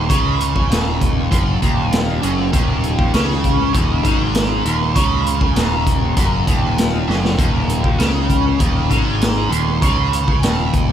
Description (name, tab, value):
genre	psychedelic rock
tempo	99 BPM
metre	4/4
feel	straight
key	unclear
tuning	A4 = 440 Hz
part	biting overdriven guitar	riff	0.0-10.9 s	Eb2 to Db3	-18 LUFS	equal	flanger, analog delay
part	fuzz picked electric bass	bass	0.0-10.9 s	Eb1 to Db2	-21 LUFS	equal	overdrive
part	raw garage drum kit	drums	0.1-10.9 s	hi-hat, kick drum, snare drum	-18 LUFS	equal	analog delay
room	small room ambience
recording	echo-heavy mix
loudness	-14 LUFS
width	side -10 dB against mid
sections	0.0-10.9 A section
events	drum fill 7.1-7.4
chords	0.0 Eb5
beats	| 0.10 0.71 1.31 1.92 | 2.53 3.14 3.75 4.35 | 4.96 5.57 6.17 6.78 | 7.39 8.00 8.60 9.21 | 9.82 10.43